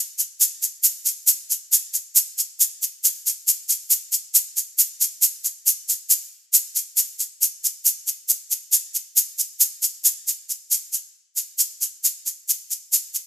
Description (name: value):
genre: folk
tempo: 137 BPM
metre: 4/4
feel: straight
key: none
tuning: none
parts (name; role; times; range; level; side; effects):
- tube shaker; percussion; 0.2-13.3 s; none; -16 LUFS; equal; none
room: light reverb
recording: none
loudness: -18 LUFS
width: side -14 dB against mid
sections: 0.0-10.5 A section; 10.5-13.3 B section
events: none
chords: none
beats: 0.42 0.85 1.29 | 1.73 2.17 2.61 3.04 | 3.48 3.92 4.36 4.79 | 5.23 5.67 6.11 6.54 | 6.98 7.42 7.86 8.29 | 8.73 9.17 9.61 10.05 | 10.49 10.93 11.38 11.82 | 12.27 12.71 13.16